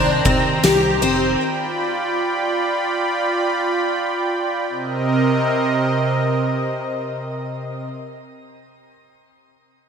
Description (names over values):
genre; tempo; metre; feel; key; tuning
dream pop; free time; none; none; unclear; A4 = 440 Hz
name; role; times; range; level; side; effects
warm analog pad; sustained chords; 0.0-7.9 s; C3 to B5; -19 LUFS; right 2 dB; chorus, shimmer reverb
picked twelve-string acoustic guitar; arpeggios; 0.0-1.4 s; C4 to G4; -20 LUFS; left 3 dB; ensemble chorus, digital delay, shimmer reverb
plucky analog bass; bass; 0.0-1.4 s; F1 to C3; -24 LUFS; equal; none
oversized low-tuned drum kit; drums; 0.2-1.2 s; kick drum, ride cymbal, snare drum, tambourine; -22 LUFS; equal; gated reverb
room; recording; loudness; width
moderate lush hall reverb, RT60 2.2 s; bright 1980s-style digital production; -17 LUFS; side -6 dB against mid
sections
0.0-4.7 A section; 4.7-8.2 B section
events
slowing down 0.0-4.7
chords
0.0 Cm7; 1.4 G7; 4.7 Cm7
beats
free time